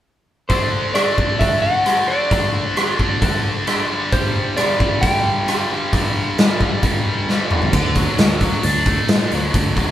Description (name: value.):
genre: classic rock.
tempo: 133 BPM.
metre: 4/4.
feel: straight.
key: unclear.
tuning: A4 = 440 Hz.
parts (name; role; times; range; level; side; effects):
electric slide guitar; melody; 0.5-7.2 s; C5 to G5; -20 LUFS; equal; none.
tight distorted guitar; riff; 0.5-9.9 s; G2 to D4; -20 LUFS; left 1 dB; distortion.
big rock drum kit; drums; 0.5-9.9 s; crash cymbal, hi-hat, kick drum, rim click, snare drum, toms; -18 LUFS; equal; none.
picked electric bass; bass; 7.7-9.9 s; D2 to A2; -22 LUFS; equal; none.
room: moderate large studio reverb, RT60 0.9 s.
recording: band playing live in one room.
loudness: -15 LUFS.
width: side -12 dB against mid.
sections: 0.5-7.7 A section; 7.7-9.9 B section.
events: drum fill 7.3-7.7.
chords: 0.5 D5; 3.9 G5; 7.7 D.